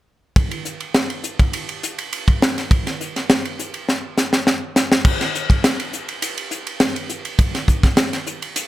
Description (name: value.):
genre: jazz.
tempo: 102 BPM.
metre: 4/4.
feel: straight.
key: none.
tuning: none.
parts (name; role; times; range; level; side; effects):
crisp fusion drum kit; drums; 0.4-8.7 s; crash cymbal, hi-hat, kick drum, ride cymbal, snare drum; -17 LUFS; equal; none.
room: light reverb.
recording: none.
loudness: -17 LUFS.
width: side -15 dB against mid.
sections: 0.4-5.0 A section; 5.0-8.7 B section.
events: drum fill 3.9-5.0.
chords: none.